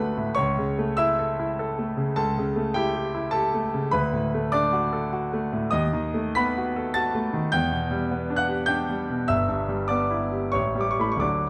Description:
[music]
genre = classical, romantic character piece for solo piano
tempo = 87-104 BPM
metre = 3/4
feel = rubato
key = unclear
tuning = A4 = 440 Hz
[part]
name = clear concert grand piano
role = solo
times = 0.0-11.5 s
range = G1 to B6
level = -25 LUFS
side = equal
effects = none
[sound]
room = moderate recital hall reverb, RT60 1.5 s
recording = none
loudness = -25 LUFS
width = mono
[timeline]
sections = 0.0-11.5 A section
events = none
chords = 0.4 A/C#; 2.2 A7/C#; 3.9 D; 5.7 B7/D#; 7.5 Em7; 9.3 Em/G; 10.6 A7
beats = | 0.38 0.98 1.58 | 2.18 2.76 3.34 | 3.93 4.52 5.11 | 5.70 6.33 6.93 | 7.52 8.11 8.70 | 9.31 9.92 10.56 | 11.23

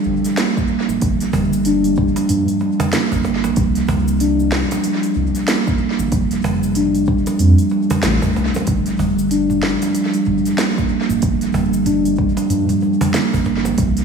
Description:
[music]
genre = organic downtempo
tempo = 94 BPM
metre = 4/4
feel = swing 60% on 16ths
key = G minor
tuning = A4 = 442 Hz
[part]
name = steel tongue drum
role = arpeggios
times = 0.1-14.0 s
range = F3 to D4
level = -17 LUFS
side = right 1 dB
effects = dub echo
[part]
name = warm sub bass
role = bass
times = 0.1-14.0 s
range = D1 to G2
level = -21 LUFS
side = equal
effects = sidechain pumping
[part]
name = afro-pop drum kit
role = drums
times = 0.2-14.0 s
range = cabasa, hi-hat, snare drum, toms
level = -24 LUFS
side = equal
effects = tape echo
[part]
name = electronic kick drum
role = drums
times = 0.6-13.9 s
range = none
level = -21 LUFS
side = equal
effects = none
[part]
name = cajon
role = percussion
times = 1.3-13.8 s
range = none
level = -25 LUFS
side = right 1 dB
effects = none
[sound]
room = moderate echo chamber reverb, RT60 1.8 s, digital ambience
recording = echo-heavy mix, studio reverb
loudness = -15 LUFS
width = side -6 dB against mid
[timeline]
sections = 0.0-14.0 A section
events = none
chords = 0.0 Gm; 3.6 C5; 6.1 F; 8.7 G7(no3)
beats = 0.38 | 1.02 1.65 2.29 2.93 | 3.57 4.21 4.85 5.48 | 6.12 6.76 7.40 8.04 | 8.68 9.31 9.95 10.59 | 11.23 11.87 12.51 13.14 | 13.78

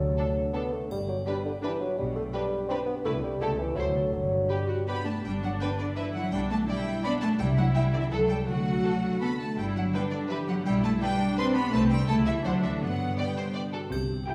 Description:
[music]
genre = cinematic, playful, whimsical film cue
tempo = 166 BPM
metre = 3/4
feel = straight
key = G major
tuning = A4 = 440 Hz
[part]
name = dark bassoon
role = accompaniment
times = 0.0-4.9 s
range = D3 to C4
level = -32 LUFS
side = equal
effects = none
[part]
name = concert harp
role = arpeggios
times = 0.0-14.3 s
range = G2 to D5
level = -38 LUFS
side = equal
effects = none
[part]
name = dark studio double bass section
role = bass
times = 0.0-14.2 s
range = G1 to G2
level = -35 LUFS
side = equal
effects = none
[part]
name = rich studio cello section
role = bass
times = 0.0-14.2 s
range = C2 to C4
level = -32 LUFS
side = equal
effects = none
[part]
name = rich studio violin section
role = melody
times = 0.2-14.3 s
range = A4 to G5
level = -40 LUFS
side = equal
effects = none
[part]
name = rich studio violin section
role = second line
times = 0.2-14.3 s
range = G4 to C6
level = -39 LUFS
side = equal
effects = none
[part]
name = rich studio viola section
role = accompaniment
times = 0.2-14.3 s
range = B3 to A4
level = -37 LUFS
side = equal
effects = none
[part]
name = triangle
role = percussion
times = 0.9-1.6, 13.9-14.3 s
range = none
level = -53 LUFS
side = equal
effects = none
[part]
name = marimba with medium hard mallets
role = melody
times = 13.7-14.3 s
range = F#4 to G4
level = -38 LUFS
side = equal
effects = none
[sound]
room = wet recital hall reverb, RT60 1.4 s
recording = recorded in a church or concert hall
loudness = -28 LUFS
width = mono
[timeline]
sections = 0.0-5.2 A section; 5.2-13.9 A section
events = none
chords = 0.0 D; 0.9 G; 2.0 G/B; 3.1 Cmaj7; 3.4 A7/C#; 3.8 D9; 4.1 G; 6.3 G/B; 7.4 C; 8.1 A7/C#; 8.5 D; 9.6 G; 10.7 G/B; 11.7 Cmaj7; 12.1 A7/C#; 12.4 Dadd9; 12.8 G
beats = 0.17 0.54 | 0.90 1.26 1.62 | 1.98 2.34 2.70 | 3.06 3.41 3.77 | 4.14 4.51 4.88 | 5.25 5.61 5.97 | 6.33 6.69 7.04 | 7.40 7.75 8.11 | 8.48 8.85 9.21 | 9.58 9.94 10.30 | 10.66 11.02 11.38 | 11.73 12.09 12.45 | 12.81 13.18 13.55 | 13.92 14.28

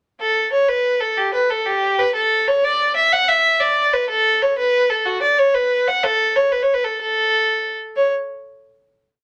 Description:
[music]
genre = celtic folk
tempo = 124 BPM (dotted quarters)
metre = 6/8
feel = straight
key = A mixolydian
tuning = A4 = 438 Hz
[part]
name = dark fiddle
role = solo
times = 0.2-8.1 s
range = F#4 to F#5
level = -18 LUFS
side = equal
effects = none
[sound]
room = moderate studio ambience, RT60 0.5 s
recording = none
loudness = -18 LUFS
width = mono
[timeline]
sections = 0.2-8.0 A section; 8.0-8.9 final note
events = none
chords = none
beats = | 0.20 0.69 | 1.17 1.66 | 2.15 2.63 | 3.12 3.60 | 4.09 4.57 | 5.06 5.54 | 6.03 6.51 | 6.99 7.48 | 7.96

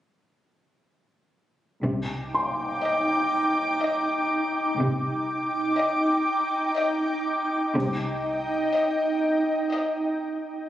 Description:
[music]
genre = cinematic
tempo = 61 BPM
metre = 3/4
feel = straight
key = C minor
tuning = A4 = 441 Hz
[part]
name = ethereal airy pad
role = sustained chords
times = 2.3-10.7 s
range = Eb4 to D6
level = -24 LUFS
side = equal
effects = ensemble chorus, built-in reverb
[part]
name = warm symphonic cello section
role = bass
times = 1.8-8.5 s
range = C3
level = -30 LUFS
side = equal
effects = none
[part]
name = warm symphonic double bass section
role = bass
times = 1.8-8.5 s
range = C2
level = -32 LUFS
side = equal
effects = none
[part]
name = felt-muted upright piano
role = texture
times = 2.3-7.8 s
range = C6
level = -32 LUFS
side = left 1 dB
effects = none
[part]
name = warm symphonic violin section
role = melody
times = 2.8-10.5 s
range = Eb5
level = -29 LUFS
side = left 2 dB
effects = none
[sound]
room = wet recital hall reverb, RT60 1.8 s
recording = recorded on a phone in the room, studio reverb, compression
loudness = -23 LUFS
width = side -12 dB against mid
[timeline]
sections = 1.8-10.7 A section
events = none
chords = 1.8 Cmadd9; 7.7 Eb/C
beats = | 1.84 2.83 3.81 | 4.79 5.78 6.76 | 7.75 8.73 9.71

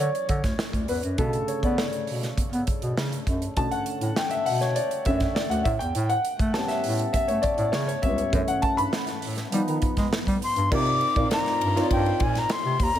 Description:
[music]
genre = polished 1980s jazz-funk pop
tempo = 101 BPM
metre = 4/4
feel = straight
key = B minor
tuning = A4 = 438 Hz
[part]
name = warm grand piano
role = accompaniment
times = 0.0-13.0 s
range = C#3 to B5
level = -26 LUFS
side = left 1 dB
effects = lush chorus
[part]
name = breathy bass clarinet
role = bass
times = 0.0-13.0 s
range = C#2 to B3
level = -27 LUFS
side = equal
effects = none
[part]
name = modern studio drum kit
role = drums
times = 0.0-13.0 s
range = crash cymbal, hi-hat, kick drum, ride cymbal, snare drum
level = -28 LUFS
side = right 1 dB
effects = none
[part]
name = breathy jazz flute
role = melody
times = 10.4-13.0 s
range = G5 to D6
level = -25 LUFS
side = left 2 dB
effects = none
[sound]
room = light reverb, small room reverb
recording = none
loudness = -22 LUFS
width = side -11 dB against mid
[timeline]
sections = 0.0-10.7 A section; 10.7-13.0 B section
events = grand piano solo 0.0-10.7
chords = 0.0 Dmaj9; 1.2 Bm7; 5.7 A7; 8.3 F#m7; 9.5 G7b13; 10.7 Cm11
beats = 0.59 | 1.19 1.78 2.38 2.98 | 3.57 4.17 4.76 5.36 | 5.95 6.55 7.14 7.74 | 8.34 8.93 9.53 10.12 | 10.72 11.31 11.91 12.50

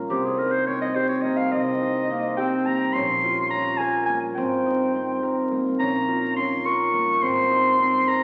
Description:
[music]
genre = contemporary instrumental, chamber music in an uneven meter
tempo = 211 BPM (eighths)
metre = 5/8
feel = straight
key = Bb dorian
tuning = A4 = 440 Hz
[part]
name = concert harp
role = arpeggios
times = 0.0-8.2 s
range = Bb3 to Bb4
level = -26 LUFS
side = equal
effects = none
[part]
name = upright bass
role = bass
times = 0.0-8.2 s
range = Ab1 to C2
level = -44 LUFS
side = equal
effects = none
[part]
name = breathy clarinet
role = melody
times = 0.1-8.2 s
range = G4 to Db6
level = -26 LUFS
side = equal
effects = none
[part]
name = mellow clarinet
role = second line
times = 2.1-2.9 s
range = Bb3 to C4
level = -30 LUFS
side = equal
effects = none
[sound]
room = wet recital hall reverb, RT60 1.4 s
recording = very old 78 rpm record, vinyl crackle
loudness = -23 LUFS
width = mono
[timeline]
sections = 0.0-2.9 A section; 2.9-8.2 B section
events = none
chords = 0.1 Cm; 2.9 Bbmadd9; 4.4 Abmaj9; 5.8 Bbm; 7.2 Abadd9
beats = | 0.10 0.38 0.67 0.95 1.24 | 1.52 1.81 2.09 2.38 2.66 | 2.95 3.23 3.52 3.80 4.09 | 4.37 4.66 4.94 5.23 5.51 | 5.80 6.08 6.37 6.65 6.93 | 7.22 7.50 7.79 8.07

